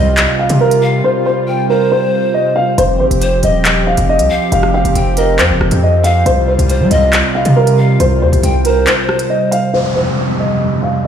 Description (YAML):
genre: hip hop, drill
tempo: 138 BPM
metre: 4/4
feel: half-time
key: unclear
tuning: A4 = 441 Hz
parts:
  - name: dark concert grand piano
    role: melody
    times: 0.0-11.1 s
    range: Bb4 to F5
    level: -15 LUFS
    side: right 1 dB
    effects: low-pass filter, digital delay
  - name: breathy pan flute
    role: second line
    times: 0.0-9.7 s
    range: C5 to G5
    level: -21 LUFS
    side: left 3 dB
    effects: digital delay
  - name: warm analog pad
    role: sustained chords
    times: 0.0-11.1 s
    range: F2 to G4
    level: -18 LUFS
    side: right 2 dB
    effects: chorus, low-pass filter
  - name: hard-hitting 808-style bass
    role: bass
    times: 0.0-8.9 s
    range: Eb1 to G3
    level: -14 LUFS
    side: equal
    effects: none
  - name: drill drum kit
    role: drums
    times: 0.2-9.6 s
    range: handclaps, hi-hat, rim click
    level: -17 LUFS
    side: equal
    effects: none
  - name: downlifter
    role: sound effects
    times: 9.7-11.1 s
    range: none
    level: -20 LUFS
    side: right 1 dB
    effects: none
room: light reverb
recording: played on a big sound system in a bare room, stone room reverb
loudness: -10 LUFS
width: side -8 dB against mid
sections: 0.0-9.7 A section; 9.7-11.1 B section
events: break 1.0-2.8, 8.9-9.7; filter sweep 9.7-11.1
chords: 0.0 Csus4; 2.8 Fsus2; 6.3 Csus4; 9.7 Fsus2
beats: 0.17 0.61 | 1.04 1.48 1.91 2.35 | 2.78 3.22 3.65 4.09 | 4.52 4.96 5.39 5.83 | 6.26 6.70 7.13 7.56 | 8.00 8.43 8.87 9.30 | 9.74 10.17 10.61 11.04